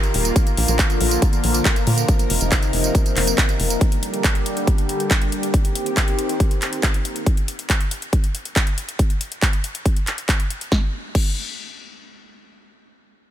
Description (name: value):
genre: uplifting trance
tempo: 139 BPM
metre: 4/4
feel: straight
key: unclear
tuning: A4 = 440 Hz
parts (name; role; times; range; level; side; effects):
- supersaw pad; sustained chords; 0.0-7.2 s; C3 to Bb4; -24 LUFS; equal; phaser, sidechain pumping, low-pass filter
- big-room dance drum kit; drums; 0.0-11.3 s; crash cymbal, handclaps, hi-hat, snare drum, tambourine; -24 LUFS; equal; sidechain pumping on hats, sidechain pumping on perc, sidechain pumping on cymbals
- tight sequencer bass; bass; 0.1-3.8 s; Eb1 to Bb2; -21 LUFS; equal; sidechain pumping
- electronic kick drum; drums; 0.4-11.3 s; none; -19 LUFS; equal; none
room: little or no reverb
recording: none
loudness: -17 LUFS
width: side -11 dB against mid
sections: 0.0-10.7 A section; 10.7-13.3 B section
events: filter sweep on analog synth bass 0.0-3.8; filter sweep on supersaw synth 0.0-7.3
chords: 0.4 Bb; 2.1 F7sus4; 3.8 Gm; 5.5 Cm7; 7.3 N.C.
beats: | 0.36 0.79 1.22 1.65 | 2.08 2.52 2.95 3.38 | 3.81 4.24 4.67 5.11 | 5.54 5.97 6.40 6.83 | 7.26 7.70 8.13 8.56 | 8.99 9.42 9.86 10.29 | 10.72 11.15